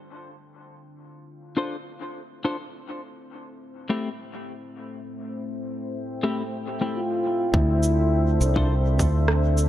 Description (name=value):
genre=ambient dub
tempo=103 BPM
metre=4/4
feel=straight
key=D minor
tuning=A4 = 441 Hz
part: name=deep dark ambient pad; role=sustained chords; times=0.0-9.7 s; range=A3 to G5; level=-32 LUFS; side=left 1 dB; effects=chorus, built-in reverb
part: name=clean electric guitar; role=stabs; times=1.6-8.7 s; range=A3 to C5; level=-30 LUFS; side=left 2 dB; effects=analog chorus, low-pass filter, dub echo
part: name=trombone with bucket mute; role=melody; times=7.0-9.7 s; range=A3 to F4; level=-26 LUFS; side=equal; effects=dub echo
part: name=modern bright fingered electric bass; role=bass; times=7.5-9.7 s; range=C2 to D2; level=-20 LUFS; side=equal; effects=none
part: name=electronic kick drum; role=drums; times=7.5-9.1 s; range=none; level=-24 LUFS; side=equal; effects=none
part: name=electronic cabasa and rim click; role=drums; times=7.8-9.7 s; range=none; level=-28 LUFS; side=right 2 dB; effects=none
room=light reverb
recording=echo-heavy mix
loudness=-22 LUFS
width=side -13 dB against mid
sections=0.0-7.5 A section; 7.5-9.7 B section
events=filter sweep on ambient pad 0.0-7.5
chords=0.0 Dm7; 2.9 Am7; 7.5 Dm7